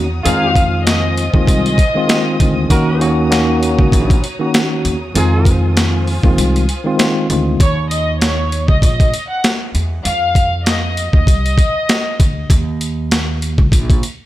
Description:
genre	hip hop, boom-bap hip-hop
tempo	98 BPM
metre	4/4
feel	swing 57% on 16ths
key	Eb dorian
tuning	A4 = 443 Hz
part	tine electric piano	accompaniment	0.0-7.6 s	Eb3 to Gb4	-17 LUFS	left 1 dB	fast stereo tremolo, cassette tape, high-pass filter, low-pass filter
part	warm studio string section	sustained chords	0.0-7.6 s	F4 to Eb6	-27 LUFS	equal	high-pass filter, low-pass filter
part	upright bass	bass	0.0-14.0 s	Bb1 to F2	-18 LUFS	equal	none
part	dark studio violin section	melody	0.2-2.7, 7.6-12.5 s	Db5 to Gb5	-19 LUFS	left 1 dB	high-pass filter, low-pass filter
part	warm horn section	stabs	0.2-5.6 s	Eb4 to Bb4	-24 LUFS	right 2 dB	high-pass filter, low-pass filter, tape echo
part	boom bap sampler-style drum kit	drums	0.3-14.2 s	hi-hat, kick drum, snare drum	-14 LUFS	equal	none
room	studio reverb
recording	none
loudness	-12 LUFS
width	side -15 dB against mid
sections	0.0-7.6 A section; 7.6-14.3 B section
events	kick muted 6.4-7.6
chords	0.3 Fm7; 2.7 Ebm7; 5.1 Fm7; 7.6 Eb5; 10.0 F5; 12.5 Eb5

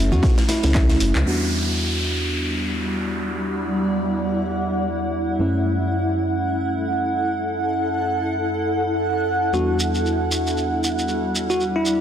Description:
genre	deep house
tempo	116 BPM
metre	4/4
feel	swing 58% on 16ths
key	E dorian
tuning	A4 = 436 Hz
part	mellow FM electric piano	stabs	0.0-12.0 s	E2 to F#4	-25 LUFS	equal	chorus, sidechain pumping, low-pass filter, tape echo
part	sub bass with octave	bass	0.0-1.2 s	F#1 to F#2	-19 LUFS	equal	sidechain pumping
part	bell-like tine electric piano	melody	0.1-1.2, 9.5-12.0 s	E4 to F#4	-26 LUFS	equal	fast stereo tremolo, tape echo
part	huge arena drum kit	drums	0.1-1.1 s	ride cymbal, snare drum	-33 LUFS	equal	high-pass filter on cymbals, high-pass filter on snare, high-pass filter on room
part	congas	percussion	0.1-1.2 s	none	-30 LUFS	right 2 dB	none
part	shekere	percussion	0.1-1.2, 9.5-12.0 s	none	-28 LUFS	right 1 dB	none
part	electronic kick drum	drums	0.2-0.9 s	none	-19 LUFS	equal	none
part	house drum kit	drums	0.5-1.2 s	handclaps, hi-hat	-30 LUFS	left 1 dB	low-pass filter on hats, low-pass filter on snare, low-pass filter on room
part	downlifter	sound effects	1.3-5.4 s	none	-28 LUFS	equal	none
part	granular cloud pad	texture	2.5-12.0 s	G3 to F#5	-22 LUFS	right 1 dB	built-in reverb, sidechain pumping
room	wet lush hall reverb, RT60 2.0 s, small room ambience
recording	dense, heavily limited modern master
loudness	-19 LUFS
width	side -9 dB against mid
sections	0.0-1.3 A section; 1.3-12.0 B section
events	drum fill 0.7-1.3; band accent 1.1; filter sweep on FM electric piano 1.3-12.0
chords	0.0 F#m7; 1.3 Em9; 5.4 F#m7; 9.5 Em9

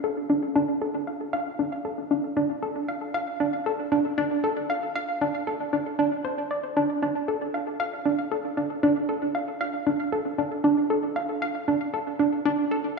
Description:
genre	ambient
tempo	116 BPM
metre	4/4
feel	straight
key	D minor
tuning	A4 = 440 Hz
part	hollow square pluck	solo	0.0-12.9 s	D4 to F5	-24 LUFS	right 1 dB	chorus, tape echo
room	wet lush hall reverb, RT60 2.9 s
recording	cassette tape, small room reverb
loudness	-24 LUFS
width	side -4 dB against mid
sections	0.0-13.0 A section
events	none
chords	none

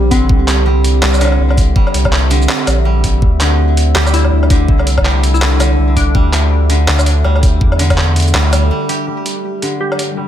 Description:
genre	half-time drum and bass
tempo	164 BPM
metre	4/4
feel	swing 59% on 16ths, half-time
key	unclear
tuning	A4 = 440 Hz
part	deep dark ambient pad	sustained chords	0.0-10.3 s	G3 to E5	-21 LUFS	equal	chorus, built-in reverb, sidechain pumping
part	koto	arpeggios	0.0-10.3 s	D3 to G4	-20 LUFS	right 1 dB	low-pass filter, ping-pong delay
part	saturated sub bass	bass	0.0-8.7 s	Bb1 to E2	-12 LUFS	equal	tube saturation
part	glassy wavetable pluck	melody	0.1-0.4, 4.0-6.5, 9.8-10.0 s	C4 to G4	-22 LUFS	left 3 dB	chorus, dub echo
part	boom bap sampler-style drum kit	drums	0.1-10.1 s	handclaps, hi-hat, shaker, woodblock	-17 LUFS	equal	none
part	electronic kick drum	drums	0.1-8.0 s	none	-13 LUFS	equal	none
part	pulsing gated texture	texture	9.1-10.3 s	G3 to G4	-25 LUFS	left 3 dB	chorus, built-in reverb
room	light reverb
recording	none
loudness	-10 LUFS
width	side -10 dB against mid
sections	0.0-9.1 A section; 9.1-10.3 B section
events	drop 0.0-9.1; break 8.7-9.1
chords	0.0 C; 3.2 Dsus2; 9.1 G5

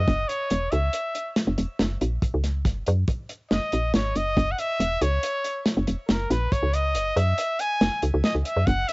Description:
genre	progressive instrumental, band music in an uneven meter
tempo	140 BPM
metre	5/4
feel	straight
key	F# mixolydian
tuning	A4 = 440 Hz
part	clear trumpet	melody	0.0-8.9 s	A#4 to G#5	-26 LUFS	equal	cassette tape, tape echo
part	woody FM bass	bass	0.0-8.8 s	E1 to F#2	-23 LUFS	equal	none
part	warm soul drum kit	drums	0.1-8.9 s	hi-hat, kick drum, snare drum	-26 LUFS	equal	cassette tape
room	light reverb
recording	home recording on cassette, nothing above 7.8 kHz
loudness	-22 LUFS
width	side -30 dB against mid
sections	0.0-8.9 A section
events	trumpet solo 0.0-8.9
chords	0.0 F#5

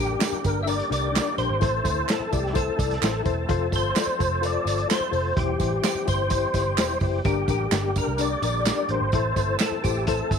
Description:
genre	uptempo 1960s-style soul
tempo	128 BPM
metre	4/4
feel	straight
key	G dorian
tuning	A4 = 440 Hz
part	percussive tonewheel organ	melody	0.0-10.4 s	G4 to E5	-27 LUFS	left 1 dB	chorus vibrato, fast rotary speaker
part	reed electric piano	accompaniment	0.0-10.4 s	G2 to D5	-29 LUFS	left 13 dB	fast tremolo
part	overdriven tonewheel organ	sustained chords	0.0-10.4 s	D3 to A4	-33 LUFS	right 1 dB	slow rotary speaker, chorus vibrato
part	vintage muted picked electric bass	bass	0.0-10.4 s	E1 to D2	-28 LUFS	right 2 dB	none
part	vintage drum kit	drums	0.2-10.4 s	hi-hat, kick drum, snare drum	-28 LUFS	right 2 dB	none
part	handclaps and tambourine	percussion	0.2-10.4 s	none	-33 LUFS	right 17 dB	none
room	light reverb, studio reverb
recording	1960s-style stereo with parts hard left and right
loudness	-21 LUFS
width	side -7 dB against mid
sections	0.0-10.4 A section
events	none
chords	0.0 Gm; 1.6 Am; 3.5 F; 5.4 C/E; 7.3 Gm; 9.1 Am

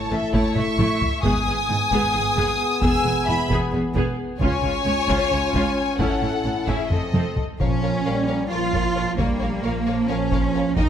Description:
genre	cinematic, epic orchestral film score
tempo	265 BPM (eighths)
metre	7/8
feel	straight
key	Bb dorian from 7.6 s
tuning	A4 = 440 Hz
part	warm symphonic violin section	melody	0.0-10.8 s	Eb5 to E6	-28 LUFS	left 3 dB	none
part	warm symphonic violin section	second line	0.0-10.8 s	G#4 to G#5	-27 LUFS	left 2 dB	none
part	warm French horn section	sustained chords	0.0-10.9 s	Eb3 to A4	-28 LUFS	left 2 dB	none
part	warm symphonic viola section	accompaniment	0.1-10.9 s	E3 to Bb4	-29 LUFS	equal	none
part	clear studio cello section	bass	0.1-10.9 s	C#2 to F4	-26 LUFS	right 2 dB	none
part	warm symphonic double bass section	bass	0.1-10.9 s	E1 to Eb2	-28 LUFS	right 3 dB	none
part	taiko ensemble	drums	0.3-10.9 s	none	-26 LUFS	equal	none
room	moderate scoring stage reverb, RT60 1.6 s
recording	none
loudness	-19 LUFS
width	side -9 dB against mid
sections	0.0-7.6 A section; 7.6-10.9 B section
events	drum fill 0.6-1.2, 6.9-7.6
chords	0.0 A; 1.2 G#m; 2.8 E; 4.4 C#; 6.0 A; 6.9 F7; 7.6 Bbm

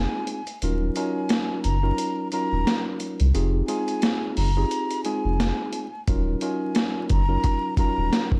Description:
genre	hip hop, boom-bap hip-hop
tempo	88 BPM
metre	4/4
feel	swing 57% on 16ths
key	Eb dorian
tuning	A4 = 444 Hz
part	breathy jazz flute	melody	0.0-8.3 s	Ab5 to Bb5	-33 LUFS	equal	high-pass filter, low-pass filter
part	mellow tine electric piano	accompaniment	0.0-8.4 s	Gb3 to Bb4	-30 LUFS	equal	cassette tape, high-pass filter, low-pass filter
part	warm sub bass	bass	0.0-8.1 s	Eb1 to C2	-25 LUFS	equal	none
part	boom bap sampler-style drum kit	drums	0.3-8.4 s	hi-hat, kick drum, snare drum	-28 LUFS	equal	none
room	light reverb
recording	dark, warm production, vinyl crackle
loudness	-24 LUFS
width	mono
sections	0.0-8.4 A section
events	break 0.0-6.1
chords	0.0 Fm7; 0.6 Ebm9; 3.4 Fm9; 6.1 Ebm9

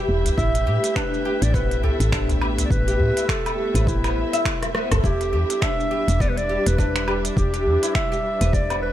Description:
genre	organic downtempo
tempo	103 BPM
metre	4/4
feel	swing 58% on 16ths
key	E minor pentatonic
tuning	A4 = 441 Hz
part	muted studio string section	sustained chords	0.0-8.9 s	G3 to E5	-31 LUFS	right 1 dB	sidechain pumping
part	oud	arpeggios	0.0-8.8 s	B3 to E5	-26 LUFS	equal	digital delay
part	wind-like tuned noise texture	texture	0.0-5.0 s	G4 to G5	-35 LUFS	equal	built-in reverb
part	woody FM bass	bass	0.1-8.9 s	E1 to A2	-22 LUFS	equal	sidechain pumping
part	organic electronic drum kit	drums	0.3-8.8 s	finger snaps, hi-hat, rim click, shaker, woodblock	-28 LUFS	right 1 dB	none
part	udu	percussion	0.3-5.0 s	none	-26 LUFS	left 1 dB	none
part	mellow clarinet	melody	0.4-8.9 s	E4 to E5	-26 LUFS	equal	ping-pong delay
part	electronic kick drum	drums	0.4-8.7 s	none	-26 LUFS	equal	overdrive
room	light reverb, studio ambience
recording	none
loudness	-19 LUFS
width	side -12 dB against mid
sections	0.0-5.0 A section; 5.0-8.9 B section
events	filter sweep on oud 0.0-5.0; drum fill 4.6-5.0; band accent 4.9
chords	0.4 Asus2; 5.0 Em7

